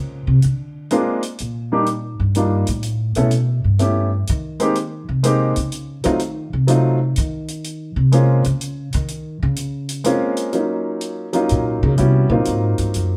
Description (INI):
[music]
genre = jazz piano trio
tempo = 125 BPM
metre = 3/4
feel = swing 67% on 8ths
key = Bb minor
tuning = A4 = 441 Hz
[part]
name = warm baby grand piano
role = melody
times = 0.0-13.2 s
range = Gb3 to A4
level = -22 LUFS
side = equal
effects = none
[part]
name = upright bass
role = bass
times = 0.0-13.2 s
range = Gb2 to Eb3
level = -21 LUFS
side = equal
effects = none
[part]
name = hi-hat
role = drums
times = 0.4-13.1 s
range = none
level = -34 LUFS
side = equal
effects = none
[sound]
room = wet large studio reverb, RT60 0.9 s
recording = band playing live in one room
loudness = -19 LUFS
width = mono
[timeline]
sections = 0.0-10.5 A section; 10.5-13.2 A section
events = upright bass solo 0.0-13.2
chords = 0.4 Bb7; 1.9 Eb (rootless); 3.3 A7sus2; 4.8 Abadd9; 6.2 F7b9 (rootless); 7.6 Bbm9; 10.5 Ebm9; 12.0 Ab13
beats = | 0.43 0.91 1.39 | 1.87 2.35 2.83 | 3.31 3.79 4.28 | 4.76 5.24 5.72 | 6.20 6.68 7.16 | 7.64 8.13 8.61 | 9.09 9.57 10.05 | 10.53 11.02 11.50 | 11.98 12.46 12.94